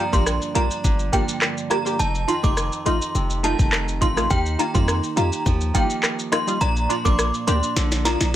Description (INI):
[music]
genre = dancehall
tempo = 104 BPM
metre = 4/4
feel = straight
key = G minor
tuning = A4 = 440 Hz
[part]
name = synth chime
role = melody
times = 0.0-8.2 s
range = G5 to D6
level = -25 LUFS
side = equal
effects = ensemble chorus, digital delay
[part]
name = punchy chord stab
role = accompaniment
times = 0.0-8.2 s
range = G3 to G4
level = -27 LUFS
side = left 1 dB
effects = chorus, phaser, sidechain pumping
[part]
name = nylon-string guitar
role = arpeggios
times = 0.0-8.4 s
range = F2 to G4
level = -28 LUFS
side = right 5 dB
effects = digital delay
[part]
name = hard-hitting 808-style bass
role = bass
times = 0.1-8.4 s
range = F1 to F2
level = -23 LUFS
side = equal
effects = none
[part]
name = afro-pop drum kit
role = drums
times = 0.1-8.3 s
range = handclaps, hi-hat, kick drum, rim click, shaker, snare drum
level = -22 LUFS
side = equal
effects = vintage 12-bit sampler grit
[sound]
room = little or no reverb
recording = none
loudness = -19 LUFS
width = side -12 dB against mid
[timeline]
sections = 0.0-8.4 A section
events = drum fill 7.8-8.4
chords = 0.0 Gm7; 2.0 F7; 4.3 Ebadd9; 6.6 Bb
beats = 0.27 0.84 1.42 | 2.00 2.57 3.15 3.73 | 4.30 4.88 5.46 6.03 | 6.61 7.19 7.76 8.34